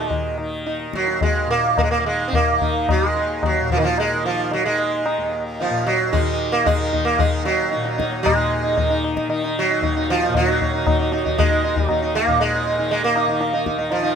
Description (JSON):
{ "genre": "indian classical, Hindustani", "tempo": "107-120 BPM", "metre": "4/4", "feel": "straight", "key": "Eb raga bhimpalasi", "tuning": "A4 = 439 Hz", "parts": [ { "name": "sitar", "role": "melody", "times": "0.0-14.2 s", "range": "Eb3 to Eb4", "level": "-19 LUFS", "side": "right 2 dB", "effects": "none" }, { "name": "tanpura", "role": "drone", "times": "0.0-14.2 s", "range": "Eb2 to Eb3", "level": "-27 LUFS", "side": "left 1 dB", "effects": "none" }, { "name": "tabla", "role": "percussion", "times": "0.1-14.1 s", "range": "none", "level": "-23 LUFS", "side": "left 4 dB", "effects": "none" } ], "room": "little or no reverb", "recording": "close, detailed microphones", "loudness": "-17 LUFS", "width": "side -7 dB against mid", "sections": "0.0-8.3 A section; 8.3-14.2 B section", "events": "speeding up 0.0-14.2", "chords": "none", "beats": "0.11 0.67 1.23 | 1.78 2.33 2.88 3.43 | 3.97 4.51 5.06 5.59 | 6.13 6.67 7.20 7.73 | 8.25 8.78 9.30 9.82 | 10.34 10.86 11.38 11.89 | 12.40 12.91 13.41 13.92" }